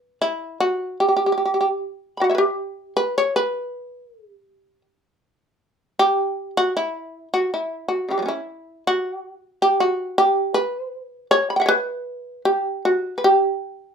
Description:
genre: japanese traditional, Japanese chamber music.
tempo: 75-82 BPM.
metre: 2/4.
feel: rubato.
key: unclear.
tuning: A4 = 439 Hz.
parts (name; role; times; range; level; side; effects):
shamisen; solo; 0.0-13.9 s; C#3 to B5; -19 LUFS; equal; none.
room: light reverb.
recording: none.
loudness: -19 LUFS.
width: side -6 dB against mid.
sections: 0.0-8.3 A section; 8.3-13.9 B section.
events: none.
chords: none.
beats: | 0.60 1.39 | 2.18 2.97 | 3.73 4.48 | 5.22 5.96 | 6.71 7.49 | 8.28 9.06 | 9.83 10.58 | 11.32 12.07 | 12.85 13.63.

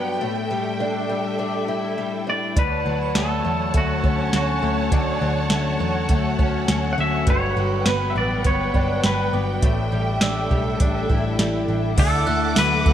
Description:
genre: dream pop.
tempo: 102 BPM.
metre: 4/4.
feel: straight.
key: D major.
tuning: A4 = 440 Hz.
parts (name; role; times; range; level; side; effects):
warm studio string section; sustained chords; 0.0-12.9 s; A4 to D6; -27 LUFS; right 1 dB; none.
fingerpicked twelve-string acoustic guitar; arpeggios; 0.0-12.9 s; G2 to E4; -25 LUFS; left 3 dB; lush chorus, digital delay.
twangy electric guitar; melody; 2.3-12.9 s; F#4 to F#5; -25 LUFS; equal; wide subtle chorus, digital delay.
vintage muted picked electric bass; bass; 2.6-12.9 s; G1 to E2; -25 LUFS; right 1 dB; none.
soft vintage rhythm box; drums; 2.6-12.9 s; crash cymbal, hi-hat, kick drum, ride cymbal, snare drum, tambourine; -22 LUFS; right 1 dB; gated reverb.
glockenspiel with soft plastic mallets; texture; 2.6-3.7, 9.3-12.9 s; B5 to F#6; -36 LUFS; right 5 dB; digital delay.
room: moderate lush hall reverb, RT60 1.7 s.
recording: bright 1980s-style digital production.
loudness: -19 LUFS.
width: side -10 dB against mid.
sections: 0.0-12.0 A section.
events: none.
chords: 0.2 A7sus4; 2.6 Dmaj7; 7.3 Gmaj7; 9.6 A7sus4; 12.0 Dadd9.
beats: | 0.21 0.80 1.39 1.98 | 2.56 3.15 3.74 4.33 | 4.92 5.51 6.09 6.68 | 7.27 7.86 8.45 9.04 | 9.62 10.21 10.80 11.39 | 11.98 12.56.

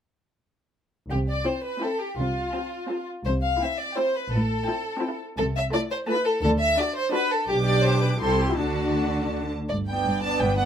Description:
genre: quick classical-period movement for string orchestra.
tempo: 168 BPM.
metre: 3/4.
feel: rubato.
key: C major, G major from 5.4 s.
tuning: A4 = 444 Hz.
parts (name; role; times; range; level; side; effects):
rich studio violin section; second line; 1.1-10.7 s; F4 to F5; -26 LUFS; left 1 dB; none.
warm studio cello section; bass; 1.1-10.7 s; G2 to D3; -28 LUFS; right 1 dB; none.
warm studio double bass section; bass; 1.1-10.7 s; G1 to D2; -28 LUFS; right 1 dB; none.
warm studio violin section; melody; 1.5-10.7 s; D5 to D6; -31 LUFS; right 2 dB; none.
dark studio viola section; accompaniment; 1.5-10.7 s; A3 to G4; -29 LUFS; left 1 dB; none.
room: moderate studio reverb, RT60 0.8 s.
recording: none.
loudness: -22 LUFS.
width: side -9 dB against mid.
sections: 1.1-9.7 A section.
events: none.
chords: 1.1 C; 2.2 F/C; 3.3 C; 4.3 Am7; 5.4 Am/C; 6.4 D; 7.5 G/B; 8.2 C; 8.6 D; 9.7 G.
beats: | 1.10 1.47 1.83 | 2.19 2.54 2.90 | 3.26 3.61 3.97 | 4.32 4.67 5.03 | 5.38 5.73 6.08 | 6.43 6.78 7.13 | 7.49 7.84 8.21 | 8.59 8.96 9.33 | 9.70 10.06 10.42.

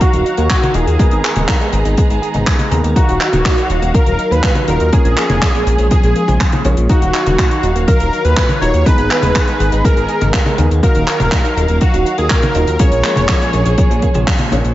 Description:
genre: italo disco.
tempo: 122 BPM.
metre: 4/4.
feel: straight.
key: Eb minor.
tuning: A4 = 441 Hz.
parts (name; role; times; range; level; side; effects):
wide unison lead; melody; 0.0-14.3 s; Gb4 to Db5; -18 LUFS; equal; analog chorus, cassette tape, tape echo.
dark studio string section; sustained chords; 0.0-14.7 s; Eb3 to Bb5; -22 LUFS; left 1 dB; vintage 12-bit sampler grit.
direct-recorded clean electric guitar; arpeggios; 0.0-14.7 s; F2 to Ab4; -25 LUFS; right 3 dB; analog chorus, tape echo.
dark concert grand piano; stabs; 0.0-14.7 s; Cb4 to Bb5; -24 LUFS; left 1 dB; none.
damped 70s drum kit; drums; 0.0-14.7 s; handclaps, hi-hat, toms; -19 LUFS; left 1 dB; gated reverb.
electronic kick drum; drums; 0.0-14.4 s; none; -14 LUFS; equal; none.
chorused synth bass; bass; 0.1-14.7 s; Eb1 to Eb2; -16 LUFS; equal; none.
room: light reverb, small room ambience.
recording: nothing above 7.7 kHz.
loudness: -11 LUFS.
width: side -14 dB against mid.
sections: 0.0-14.7 A section.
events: band accent 14.3.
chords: 0.0 Ebmadd9; 1.0 Abmadd9; 3.0 Ebmadd9; 4.9 Bbm7; 6.9 Ebmadd9; 8.9 Abmadd9; 10.8 Ebmadd9; 12.8 Bbm7.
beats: 0.01 0.50 | 0.99 1.49 1.98 2.47 | 2.96 3.45 3.94 4.44 | 4.93 5.42 5.91 6.40 | 6.89 7.39 7.88 8.37 | 8.86 9.35 9.85 10.34 | 10.83 11.32 11.81 12.30 | 12.80 13.29 13.78 14.27.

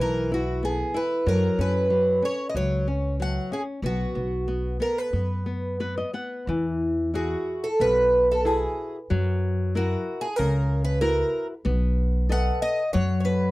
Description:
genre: fado-style ballad.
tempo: 94 BPM.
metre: 4/4.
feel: rubato.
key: E major from 6.5 s.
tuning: A4 = 440 Hz.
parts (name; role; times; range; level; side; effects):
picked twelve-string acoustic guitar; melody; 0.0-13.5 s; F#4 to F#5; -25 LUFS; right 1 dB; none.
flamenco guitar; accompaniment; 0.0-13.5 s; B2 to F#5; -29 LUFS; left 2 dB; none.
upright bass; bass; 0.0-13.5 s; B1 to F#2; -26 LUFS; equal; none.
room: little or no reverb.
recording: dry, close 1970s-style studio recording.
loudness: -22 LUFS.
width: side -19 dB against mid.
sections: 0.0-6.5 A section; 6.5-13.5 B section.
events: nylon-string guitar fill 5.5-6.5.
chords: 0.0 E5; 1.3 F#5; 3.8 B5; 6.5 Eadd9; 9.1 F#7; 11.7 B7.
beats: 0.63 | 1.27 1.91 2.55 3.19 | 3.82 4.46 5.12 5.80 | 6.48 7.14 7.80 8.46 | 9.11 9.76 10.39 11.03 | 11.66 12.30 12.94.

